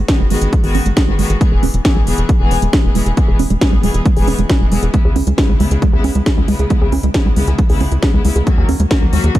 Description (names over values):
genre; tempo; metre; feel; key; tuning
uplifting trance; 136 BPM; 4/4; straight; unclear; A4 = 436 Hz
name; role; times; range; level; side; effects
tight sequenced synth; arpeggios; 0.0-9.4 s; G#3 to G#4; -21 LUFS; right 3 dB; chorus, sidechain pumping, ping-pong delay
tight sequencer bass; bass; 0.0-9.3 s; E1 to D#2; -16 LUFS; equal; sidechain pumping
rich chamber string section; sustained chords; 0.1-9.3 s; C#3 to G#4; -21 LUFS; left 2 dB; sidechain pumping
electronic kick drum; drums; 0.1-9.4 s; none; -14 LUFS; equal; overdrive, studio reverb
techno drum kit; drums; 0.1-9.4 s; hi-hat, snare drum; -21 LUFS; equal; overdrive, studio reverb
room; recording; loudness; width
digital ambience; dark, warm production; -12 LUFS; side -14 dB against mid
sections
0.0-9.4 A section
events
filter sweep on synth arpeggio sound 0.0-9.4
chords
0.0 G#m7; 1.4 E; 4.9 C#m7; 8.5 D#m